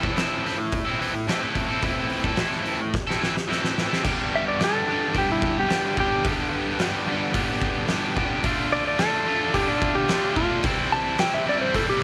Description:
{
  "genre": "garage rock duo or trio",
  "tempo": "109 BPM",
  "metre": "4/4",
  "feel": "straight",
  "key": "unclear",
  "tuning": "A4 = 440 Hz",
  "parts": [
    { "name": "cranked stack guitar", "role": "riff", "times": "0.0-12.0 s", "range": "G2 to A4", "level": "-27 LUFS", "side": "equal", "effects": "overdrive" },
    { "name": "oversized low-tuned drum kit", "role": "drums", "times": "0.0-11.9 s", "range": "crash cymbal, hi-hat, kick drum, snare drum", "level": "-30 LUFS", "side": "equal", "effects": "none" },
    { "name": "clean lap steel guitar", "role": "melody", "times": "4.4-12.0 s", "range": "D4 to A5", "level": "-27 LUFS", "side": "equal", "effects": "none" }
  ],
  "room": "light reverb, studio ambience",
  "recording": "none",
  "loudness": "-24 LUFS",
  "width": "mono",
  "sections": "0.0-4.0 A section; 4.0-12.0 B section",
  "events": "drum fill 2.9-4.0",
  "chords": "0.0 Am; 4.0 G; 8.4 Dm; 10.6 C",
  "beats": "0.19 0.74 1.29 | 1.84 2.39 2.94 3.50 | 4.05 4.60 5.15 5.70 | 6.25 6.80 7.34 7.89 | 8.45 8.99 9.54 10.09 | 10.64 11.19 11.74"
}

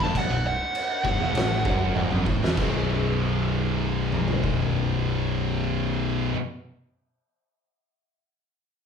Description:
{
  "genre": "stoner and doom metal",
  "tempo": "97 BPM",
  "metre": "4/4",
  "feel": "straight",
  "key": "unclear",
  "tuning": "A4 = 441 Hz",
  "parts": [
    { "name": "fuzz lead guitar", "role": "melody", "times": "0.0-2.2 s", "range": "F#5 to A5", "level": "-27 LUFS", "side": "right 1 dB", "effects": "distortion" },
    { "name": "heavy high-gain guitar", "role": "riff", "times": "0.0-6.4 s", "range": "B1 to B2", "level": "-32 LUFS", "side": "equal", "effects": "distortion" },
    { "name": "thick fuzz guitar", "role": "riff", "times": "0.0-6.4 s", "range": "B1 to B2", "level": "-29 LUFS", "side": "left 11 dB", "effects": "distortion" },
    { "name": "thick fuzz guitar", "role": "riff", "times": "0.0-6.4 s", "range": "B1 to B2", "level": "-28 LUFS", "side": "right 5 dB", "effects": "distortion" },
    { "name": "growling fingered electric bass", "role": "bass", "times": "0.0-6.3 s", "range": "B0 to A1", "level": "-32 LUFS", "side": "equal", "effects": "overdrive" },
    { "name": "oversized low-tuned drum kit", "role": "drums", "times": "0.0-4.6 s", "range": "crash cymbal, kick drum, snare drum, toms", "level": "-28 LUFS", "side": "equal", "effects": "none" }
  ],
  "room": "moderate large studio reverb, RT60 0.7 s",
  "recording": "band playing live in one room",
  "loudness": "-22 LUFS",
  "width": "side -7 dB against mid",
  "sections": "0.0-2.6 A section; 2.6-5.1 B section",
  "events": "slowing down 0.0-2.6; lead electric guitar solo 0.0-2.6; drum fill 2.0-2.6",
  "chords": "0.0 B5",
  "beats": "| 0.15 0.75 1.35 1.96 | 2.57 3.19 3.81 4.43"
}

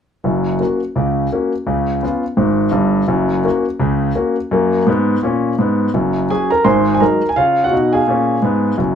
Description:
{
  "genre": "jazz, stride piano",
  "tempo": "169 BPM",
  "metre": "4/4",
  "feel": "swing 58% on 8ths",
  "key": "F# major",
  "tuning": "A4 = 440 Hz",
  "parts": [
    { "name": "warm concert grand piano", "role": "solo", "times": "0.2-8.9 s", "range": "F#1 to B#5", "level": "-14 LUFS", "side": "equal", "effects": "none" }
  ],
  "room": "wet small room ambience, RT60 0.5 s",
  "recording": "none",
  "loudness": "-14 LUFS",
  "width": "side -8 dB against mid",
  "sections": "0.2-5.9 A section; 5.9-8.9 B section",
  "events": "none",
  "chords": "0.2 F#; 1.7 C#7; 3.1 F#; 6.7 G#7; 7.4 C#7",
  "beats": "| 0.24 0.60 0.96 1.31 | 1.67 2.03 2.38 2.74 | 3.10 3.45 3.81 4.16 | 4.52 4.88 5.23 5.59 | 5.94 6.30 6.65 7.01 | 7.36 7.72 8.07 8.43 | 8.78"
}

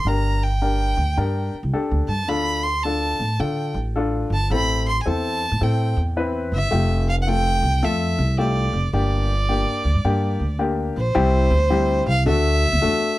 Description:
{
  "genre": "uptempo 1960s-style soul",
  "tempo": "108 BPM",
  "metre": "4/4",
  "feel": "swing 64% on 8ths",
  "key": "unclear",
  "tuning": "A4 = 438 Hz",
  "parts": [
    { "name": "rich fiddle", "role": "melody", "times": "0.0-13.2 s", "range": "C5 to C6", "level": "-24 LUFS", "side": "right 1 dB", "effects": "none" },
    { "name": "upright bass", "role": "bass", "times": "0.0-13.0 s", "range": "F1 to D3", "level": "-21 LUFS", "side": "equal", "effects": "none" },
    { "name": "warm baby grand piano", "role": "accompaniment", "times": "0.1-13.2 s", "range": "G3 to B4", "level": "-24 LUFS", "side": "left 3 dB", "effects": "none" }
  ],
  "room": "light reverb",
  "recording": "none",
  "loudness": "-18 LUFS",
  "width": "side -16 dB against mid",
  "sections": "0.0-11.2 A section; 11.2-13.2 B section",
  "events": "none",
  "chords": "0.1 Gm; 2.3 Dm; 4.5 Am; 6.7 Fadd9; 8.9 Gm; 11.2 C; 12.3 D",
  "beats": "| 0.07 0.62 1.18 1.73 | 2.29 2.84 3.40 3.95 | 4.50 5.06 5.61 6.17 | 6.72 7.28 7.83 8.39 | 8.94 9.50 10.05 10.61 | 11.16 11.72 12.27 12.83"
}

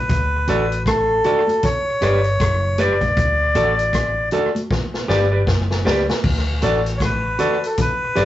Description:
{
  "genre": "roots reggae",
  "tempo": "78 BPM",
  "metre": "4/4",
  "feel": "swing 59% on 16ths",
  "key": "D major",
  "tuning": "A4 = 444 Hz",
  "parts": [
    { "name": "melodica", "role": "melody", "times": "0.0-8.2 s", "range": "A4 to D5", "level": "-20 LUFS", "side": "left 1 dB", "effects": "none" },
    { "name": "vintage muted fingered electric bass", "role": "bass", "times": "0.1-8.2 s", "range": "F#1 to D2", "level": "-22 LUFS", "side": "equal", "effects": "none" },
    { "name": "vintage drum kit", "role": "drums", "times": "0.1-8.2 s", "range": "crash cymbal, hi-hat, kick drum, rim click, snare drum", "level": "-23 LUFS", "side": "equal", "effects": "tape echo" },
    { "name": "congas", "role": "percussion", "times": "0.1-8.2 s", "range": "none", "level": "-30 LUFS", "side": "equal", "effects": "none" },
    { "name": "clean electric guitar", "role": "accompaniment", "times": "0.5-8.2 s", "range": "F#4 to D5", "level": "-19 LUFS", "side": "equal", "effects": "none" }
  ],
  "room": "wet studio ambience, RT60 0.5 s",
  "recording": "rough rehearsal-room recording, tube saturation, nothing above 7.9 kHz",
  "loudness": "-16 LUFS",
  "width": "side -13 dB against mid",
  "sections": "0.0-6.2 A section; 6.2-8.2 B section",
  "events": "drum fill 4.7-6.2",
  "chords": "0.1 D; 1.6 G; 3.2 D; 4.7 G; 6.2 D",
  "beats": "| 0.09 0.86 1.63 2.40 | 3.17 3.94 4.71 5.47 | 6.24 7.01 7.78"
}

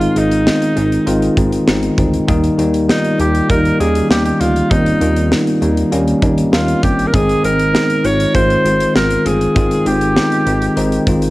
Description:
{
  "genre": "1980s-style pop",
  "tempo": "99 BPM",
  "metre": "4/4",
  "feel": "straight",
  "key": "Ab major",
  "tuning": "A4 = 442 Hz",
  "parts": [
    { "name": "bright alto saxophone", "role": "melody", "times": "0.0-11.1 s", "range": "Eb4 to Db5", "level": "-18 LUFS", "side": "right 1 dB", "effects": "cassette tape" },
    { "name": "bell-like tine electric piano", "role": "accompaniment", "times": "0.0-11.3 s", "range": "Eb3 to F4", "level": "-15 LUFS", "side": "left 1 dB", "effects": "cassette tape" },
    { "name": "chorused synth bass", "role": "bass", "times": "0.0-11.3 s", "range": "G1 to Eb2", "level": "-20 LUFS", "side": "equal", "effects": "none" },
    { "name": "modern studio drum kit", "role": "drums", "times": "0.0-11.3 s", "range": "hi-hat, kick drum, snare drum", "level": "-18 LUFS", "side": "equal", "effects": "cassette tape" }
  ],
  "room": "light reverb",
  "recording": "home recording on cassette",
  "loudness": "-12 LUFS",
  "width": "side -18 dB against mid",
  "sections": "0.0-11.3 A section",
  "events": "none",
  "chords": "0.0 Ab; 2.3 Eb; 7.1 Ab",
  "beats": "0.47 1.07 1.68 | 2.29 2.89 3.50 4.10 | 4.71 5.32 5.92 6.53 | 7.13 7.74 8.35 8.95 | 9.56 10.16 10.77"
}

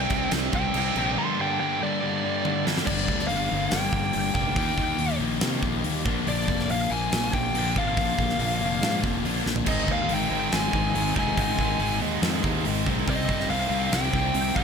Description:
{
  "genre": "hard rock",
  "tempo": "141 BPM",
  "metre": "4/4",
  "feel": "straight",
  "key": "G phrygian",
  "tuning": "A4 = 440 Hz",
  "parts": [
    { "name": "biting lead guitar", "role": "melody", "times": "0.0-14.6 s", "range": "D5 to C6", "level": "-28 LUFS", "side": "left 1 dB", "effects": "overdrive" },
    { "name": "distorted electric guitar", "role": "riff", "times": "0.0-14.6 s", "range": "G2 to Eb4", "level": "-30 LUFS", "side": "equal", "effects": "overdrive" },
    { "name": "sludgy distorted guitar", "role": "riff", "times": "0.0-14.6 s", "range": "G2 to Eb4", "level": "-30 LUFS", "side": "left 12 dB", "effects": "overdrive" },
    { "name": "tight distorted guitar", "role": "riff", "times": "0.0-2.9, 9.7-14.6 s", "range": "G2 to C4", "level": "-30 LUFS", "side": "right 14 dB", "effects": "distortion" },
    { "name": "fuzz fingered electric bass", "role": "bass", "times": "0.0-14.6 s", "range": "F1 to C3", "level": "-30 LUFS", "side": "right 1 dB", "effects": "overdrive" },
    { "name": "huge arena drum kit", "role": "drums", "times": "0.1-14.6 s", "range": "crash cymbal, hi-hat, kick drum, snare drum, toms", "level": "-29 LUFS", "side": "right 1 dB", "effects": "none" }
  ],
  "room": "light reverb, studio reverb",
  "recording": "none",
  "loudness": "-22 LUFS",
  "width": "side -6 dB against mid",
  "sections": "0.0-2.9 A section; 2.9-14.6 B section",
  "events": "lead electric guitar solo 0.0-2.9; drum fill 2.4-2.9, 9.5",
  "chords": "0.0 Cm; 1.2 Gm; 4.6 Eb; 6.1 Bb; 9.7 Ab; 13.1 Cm",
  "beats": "0.32 0.74 | 1.17 1.59 2.02 2.44 | 2.87 3.30 3.72 4.15 | 4.57 5.00 5.42 5.85 | 6.27 6.70 7.12 7.55 | 7.97 8.40 8.82 9.25 | 9.67 10.10 10.52 10.95 | 11.37 11.80 12.22 12.65 | 13.07 13.50 13.93 14.35"
}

